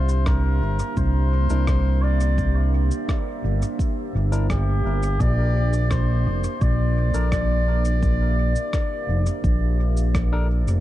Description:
ambient dub; 85 BPM; 4/4; straight; C mixolydian; A4 = 444 Hz
trumpet with cup mute; melody; 0.0-10.1 s; G4 to D5; -30 LUFS; left 2 dB; dub echo
deep dark ambient pad; sustained chords; 0.0-10.8 s; Bb3 to E5; -30 LUFS; right 3 dB; chorus, built-in reverb, vintage 12-bit sampler grit
overdriven fingered electric bass; bass; 0.0-10.8 s; F1 to C2; -20 LUFS; equal
electronic cabasa and rim click; drums; 0.1-10.8 s; -38 LUFS; equal; dub echo
electronic kick drum; drums; 0.3-10.3 s; -24 LUFS; equal
barky tine electric piano; stabs; 1.5-10.5 s; D4 to Bb4; -37 LUFS; left 3 dB; dub echo
little or no reverb; dark, warm production; -19 LUFS; side -14 dB against mid
0.0-10.8 A section
0.0 C9; 5.2 Bb
0.27 0.97 1.68 | 2.38 3.09 3.79 4.50 | 5.21 5.91 6.62 7.32 | 8.03 8.73 9.44 10.15

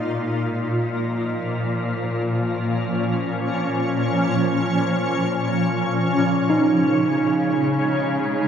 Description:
ambient; free time; A4 = 440 Hz
shimmering ambient pad; sustained chords; 0.0-8.5 s; Bb2 to F4; -21 LUFS; equal; chorus, built-in reverb
muted chamber cello section; bass; 0.0-8.5 s; Bb2 to Db3; -28 LUFS; left 1 dB
bright tine electric piano; arpeggios; 6.5-8.5 s; Eb4; -24 LUFS; right 2 dB; medium stereo tremolo, diffuse ambient delay
wet scoring stage reverb, RT60 2.1 s; -19 LUFS; side -8 dB against mid
0.0-6.1 A section; 6.1-8.5 B section
0.0 Bbm; 6.1 Db5
free time

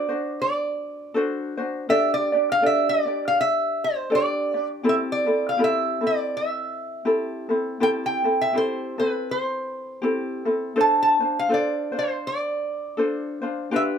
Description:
Hawaiian; 81 BPM; 4/4; swing 59% on 8ths; C major; A4 = 440 Hz
lap resonator guitar; melody; 0.0-13.8 s; B4 to A5; -23 LUFS; right 1 dB
ukulele; accompaniment; 0.0-14.0 s; C4 to D5; -24 LUFS; equal
moderate small room reverb, RT60 0.5 s; -21 LUFS; side -8 dB against mid
0.0-14.0 A section
0.0 D7; 1.9 Gsus2/D; 4.8 C6; 10.8 F6
0.39 1.13 | 1.87 2.62 3.36 4.10 | 4.84 5.58 6.32 7.06 | 7.80 8.54 9.28 10.02 | 10.76 11.50 12.24 12.98 | 13.72

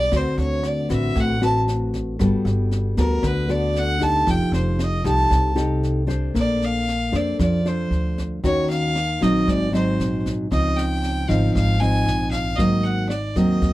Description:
bossa nova; 116 BPM; 4/4; straight; A4 = 440 Hz
rich fiddle; melody; 0.0-13.7 s; Bb4 to A5; -24 LUFS; equal
nylon-string guitar; accompaniment; 0.0-13.7 s; Ab2 to C5; -22 LUFS; left 1 dB
upright bass; bass; 0.0-13.7 s; F1 to F2; -24 LUFS; equal
jazz brush drum kit; drums; 0.1-13.7 s; kick drum, rim click, snare drum; -29 LUFS; equal
light reverb; dry, close 1970s-style studio recording; -18 LUFS; side -16 dB against mid
0.0-6.3 A section; 6.3-13.7 B section
fiddle solo 0.0-6.3
0.1 D6; 2.2 Gmaj9; 4.3 F9; 6.3 Bbmaj9; 8.4 Ebm7; 9.5 Ab7; 10.5 Dbmaj9; 12.6 Ab9
| 0.12 0.64 1.16 1.68 | 2.20 2.71 3.23 3.75 | 4.27 4.79 5.31 5.83 | 6.35 6.87 7.39 7.91 | 8.43 8.95 9.47 9.99 | 10.51 11.02 11.54 12.06 | 12.58 13.10 13.62

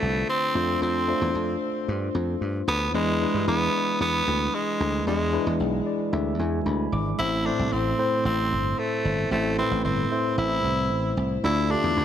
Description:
1980s-style pop; 113 BPM; 4/4; straight; A minor; A4 = 440 Hz
raspy tenor saxophone; melody; 0.0-12.0 s; G#3 to E4; -26 LUFS; equal; ping-pong delay
tine electric piano; accompaniment; 0.0-12.0 s; A2 to D6; -27 LUFS; left 1 dB; medium stereo tremolo
dry thumbed slap bass; bass; 0.0-12.0 s; G1 to G2; -27 LUFS; equal
light reverb, studio ambience; -22 LUFS; side -10 dB against mid
0.0-7.2 A section; 7.2-12.0 B section
tine electric piano fill 5.6-7.2
0.0 Dm7; 0.6 F6; 2.9 E7; 7.2 Am; 11.4 Dm
0.29 | 0.82 1.35 1.88 2.41 | 2.94 3.48 4.01 4.54 | 5.07 5.60 6.13 6.66 | 7.19 7.72 8.26 8.79 | 9.32 9.85 10.38 10.91 | 11.44 11.97

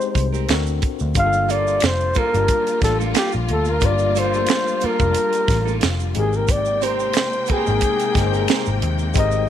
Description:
R&B, neo-soul; 90 BPM; 4/4; swing 54% on 16ths; G phrygian; A4 = 441 Hz
breathy flugelhorn; melody; 0.0-9.5 s; G4 to F5; -21 LUFS; equal
tine electric piano; accompaniment; 0.0-9.5 s; G3 to A5; -26 LUFS; left 15 dB; overdrive, fast stereo tremolo
tube shaker and finger snaps; percussion; 0.0-9.5 s; -32 LUFS; left 4 dB
vintage muted picked electric bass; bass; 0.2-9.5 s; F1 to Eb2; -22 LUFS; equal
tight funk drum kit; drums; 0.2-9.3 s; hi-hat, kick drum, snare drum; -21 LUFS; right 2 dB
flamenco guitar; second line; 0.3-8.7 s; Bb3 to Bb4; -29 LUFS; right 15 dB
warm studio string section; sustained chords; 1.2-9.5 s; C3 to G5; -29 LUFS; left 3 dB
small room ambience; 1960s-style stereo with parts hard left and right, lossy compression artefacts; -17 LUFS; side -10 dB against mid
0.0-9.5 A section
0.5 D7b13; 1.2 Gm9; 6.2 Abmaj9
0.48 | 1.15 1.82 2.48 3.15 | 3.82 4.49 5.15 5.82 | 6.49 7.15 7.82 8.48 | 9.15

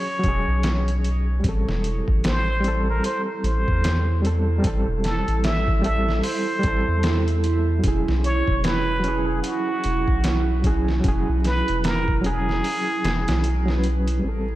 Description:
trip hop; 75 BPM; 4/4; swing 60% on 16ths; A4 = 441 Hz
trumpet with plunger mute; melody; 0.0-13.8 s; F#4 to E5; -27 LUFS; equal; dub echo
overdriven reed electric piano; accompaniment; 0.0-14.6 s; F#3 to B4; -28 LUFS; left 1 dB; fast tremolo, tape echo
soft dub sub bass; bass; 0.2-14.6 s; E1 to E2; -23 LUFS; equal
trip hop sampler-style drum kit; drums; 0.2-14.2 s; hi-hat, kick drum, snare drum; -26 LUFS; equal; overdrive, studio reverb
dark analog pad; sustained chords; 1.4-14.6 s; E4 to G4; -29 LUFS; right 7 dB; chorus
moderate plate reverb, RT60 2.3 s; dreamy mix soaked in reverb, vinyl crackle; -19 LUFS; side -15 dB against mid
0.0-14.2 A section
kick drops out 12.6-14.2
0.0 E69; 1.4 Am7; 7.8 E69
0.64 | 1.44 2.24 3.04 3.84 | 4.64 5.44 6.24 7.04 | 7.84 8.64 9.44 10.24 | 11.04 11.84 12.64 13.44 | 14.24

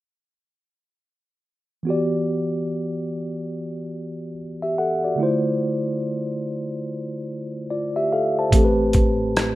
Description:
R&B, neo-soul; 72 BPM; 4/4; swing 62% on 16ths; E minor; A4 = 438 Hz
mellow tine electric piano; accompaniment; 1.8-9.6 s; A2 to A5; -22 LUFS; equal; medium stereo tremolo
woody fretless electric bass; bass; 8.5-9.6 s; A1; -25 LUFS; equal; ensemble chorus
boom bap sampler-style drum kit; drums; 8.5-9.6 s; hi-hat, kick drum, rim click; -18 LUFS; equal
moderate plate reverb, RT60 1.6 s, digital ambience; rough home demo mix; -21 LUFS; side -16 dB against mid
1.9-9.6 A section
1.9 Em9; 5.2 Dm9; 8.5 Am9
| 1.86 2.70 3.53 4.36 | 5.20 6.03 6.86 7.70 | 8.53 9.36

